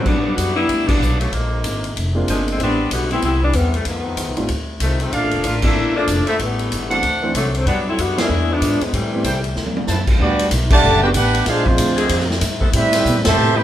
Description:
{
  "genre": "jazz, big band swing",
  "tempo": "189 BPM",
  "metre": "4/4",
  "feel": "swing 62% on 8ths",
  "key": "G major",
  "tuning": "A4 = 440 Hz",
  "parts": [
    { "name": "warm saxophone section", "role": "melody", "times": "0.0-9.5 s", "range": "A2 to F#4", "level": "-20 LUFS", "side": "left 2 dB", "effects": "none" },
    { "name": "clear saxophone section", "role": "sustained chords", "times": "0.0-0.3, 10.7-13.6 s", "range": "D3 to A4", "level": "-26 LUFS", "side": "left 1 dB", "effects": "none" },
    { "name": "upright bass", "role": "bass", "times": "0.0-13.6 s", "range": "F1 to B2", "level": "-21 LUFS", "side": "equal", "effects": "none" },
    { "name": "swinging big-band drum kit", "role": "drums", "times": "0.1-13.3 s", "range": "crash cymbal, hi-hat, kick drum, ride cymbal, snare drum, toms", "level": "-22 LUFS", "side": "equal", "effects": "none" },
    { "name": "warm baby grand piano", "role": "accompaniment", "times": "2.1-9.2 s", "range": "E3 to A4", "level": "-26 LUFS", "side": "right 2 dB", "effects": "none" },
    { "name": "clear trumpet section", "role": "stabs", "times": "5.1-10.0 s", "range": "D4 to A5", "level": "-23 LUFS", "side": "right 1 dB", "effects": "none" },
    { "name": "clear trumpet section", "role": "melody", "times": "10.2-13.6 s", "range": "Ab3 to A5", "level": "-18 LUFS", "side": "right 1 dB", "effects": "none" },
    { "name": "warm trombone section", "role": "second line", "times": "10.2-13.6 s", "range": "C3 to G4", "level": "-20 LUFS", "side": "right 2 dB", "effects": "none" }
  ],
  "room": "moderate large studio reverb, RT60 1.2 s",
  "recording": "band playing live in one room",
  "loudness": "-15 LUFS",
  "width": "side -12 dB against mid",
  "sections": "0.1-10.2 A section; 10.2-13.6 B section",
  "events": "band accent 0.8, 5.6, 8.1, 10.7, 13.2; drum fill 9.6-9.9",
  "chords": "0.1 Gmaj7; 1.3 Bb9; 2.6 Am9; 3.9 F7; 5.1 Bbmaj7; 6.4 Am7; 7.0 D7; 7.7 Gmaj7; 8.3 E7b9; 8.9 Am7; 9.6 D13; 10.2 Gmaj7; 11.5 Bb9; 12.7 Am9",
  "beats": "| 0.05 0.37 0.68 1.00 | 1.32 1.63 1.95 2.27 | 2.58 2.90 3.22 3.53 | 3.85 4.17 4.49 4.80 | 5.12 5.44 5.75 6.07 | 6.39 6.70 7.02 7.34 | 7.65 7.97 8.29 8.61 | 8.92 9.24 9.56 9.87 | 10.19 10.51 10.82 11.14 | 11.46 11.77 12.09 12.41 | 12.72 13.04 13.36"
}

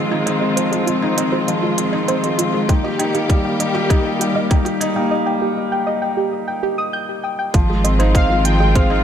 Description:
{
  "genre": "piano and strings electronica",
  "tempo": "99 BPM",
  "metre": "4/4",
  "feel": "straight",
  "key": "Ab major",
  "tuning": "A4 = 440 Hz",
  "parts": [
    { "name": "rich studio string section", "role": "sustained chords", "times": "0.0-9.0 s", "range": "Eb3 to G4", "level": "-23 LUFS", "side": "left 2 dB", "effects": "sidechain pumping, low-pass filter" },
    { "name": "felt-muted upright piano", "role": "riff", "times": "0.0-9.0 s", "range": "F3 to G4", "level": "-20 LUFS", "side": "left 1 dB", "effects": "ping-pong delay" },
    { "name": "soft round pluck", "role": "arpeggios", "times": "0.1-9.0 s", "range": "F4 to G6", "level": "-24 LUFS", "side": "right 2 dB", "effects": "chorus, sidechain pumping, ping-pong delay" },
    { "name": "electronic hi-hat", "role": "drums", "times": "0.3-8.9 s", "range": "none", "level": "-25 LUFS", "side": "right 5 dB", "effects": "none" },
    { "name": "electronic kick drum", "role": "drums", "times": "2.7-8.9 s", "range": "none", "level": "-15 LUFS", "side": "equal", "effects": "none" },
    { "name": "round analog bass", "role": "bass", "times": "7.5-9.0 s", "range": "Ab1", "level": "-17 LUFS", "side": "equal", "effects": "sidechain pumping" },
    { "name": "warm velvety synth lead", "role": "melody", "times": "8.2-9.0 s", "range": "F5 to G5", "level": "-19 LUFS", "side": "left 1 dB", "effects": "chorus" }
  ],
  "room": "moderate lush hall reverb, RT60 2.1 s",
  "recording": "none",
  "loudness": "-15 LUFS",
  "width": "side -9 dB against mid",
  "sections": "0.0-7.5 A section; 7.5-9.0 B section",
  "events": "build-up 0.0-7.5; filter sweep on synth arpeggio sound 0.0-7.5; break 5.1-7.5; drop 7.5-9.0",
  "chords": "0.0 Ab6; 2.7 Eb; 7.5 Ab6",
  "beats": "| 0.27 0.88 1.48 2.09 | 2.69 3.30 3.90 4.51 | 5.12 5.72 6.33 6.93 | 7.54 8.15 8.75"
}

